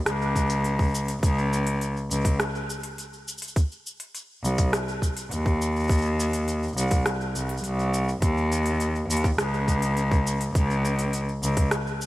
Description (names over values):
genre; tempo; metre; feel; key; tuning
folktronica; 103 BPM; 4/4; straight; unclear; A4 = 440 Hz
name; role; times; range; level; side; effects
clear cello; bass; 0.1-11.7 s; C2 to Eb2; -24 LUFS; equal; none
organic electronic drum kit; drums; 0.1-12.1 s; hi-hat, rim click, shaker; -31 LUFS; equal; none
electronic kick drum; drums; 0.4-11.7 s; none; -22 LUFS; equal; none
room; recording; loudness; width
little or no reverb; none; -23 LUFS; side -17 dB against mid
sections
0.0-12.1 A section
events
none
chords
none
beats
0.07 0.65 | 1.23 1.81 2.40 2.98 | 3.56 4.14 4.73 5.31 | 5.89 6.47 7.06 7.64 | 8.22 8.80 9.39 9.97 | 10.55 11.13 11.72